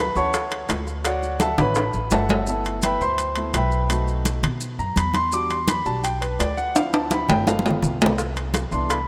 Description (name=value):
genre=Afro-Cuban jazz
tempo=168 BPM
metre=4/4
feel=straight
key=G major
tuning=A4 = 439 Hz
part: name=warm baby grand piano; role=accompaniment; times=0.0-9.1 s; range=E3 to D6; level=-26 LUFS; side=equal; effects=none
part: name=upright bass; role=bass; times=0.0-9.1 s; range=G1 to B2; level=-29 LUFS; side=equal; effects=none
part: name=bongos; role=percussion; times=0.2-2.5, 8.2-9.1 s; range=none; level=-33 LUFS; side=equal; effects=none
part: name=congas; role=percussion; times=0.2-9.1 s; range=none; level=-29 LUFS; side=equal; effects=none
part: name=maracas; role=percussion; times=0.2-9.1 s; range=none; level=-38 LUFS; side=equal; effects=none
part: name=timbales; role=percussion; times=0.3-9.1 s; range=none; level=-27 LUFS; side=equal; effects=none
room=moderate plate reverb, RT60 3.5 s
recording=rough home demo mix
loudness=-22 LUFS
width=mono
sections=0.0-2.5 A section; 2.5-9.1 A section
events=grand piano solo 0.0-9.1; drum fill 1.6-2.5, 6.8-8.2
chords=0.0 Dmaj9; 2.5 G6; 3.9 B7; 5.3 Em7; 6.8 Dm7; 7.5 G7; 8.2 Cmaj7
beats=0.33 0.69 | 1.05 1.40 1.76 2.12 | 2.47 2.83 3.19 3.54 | 3.90 4.26 4.62 4.97 | 5.33 5.69 6.04 6.40 | 6.76 7.12 7.47 7.83 | 8.19 8.54 8.90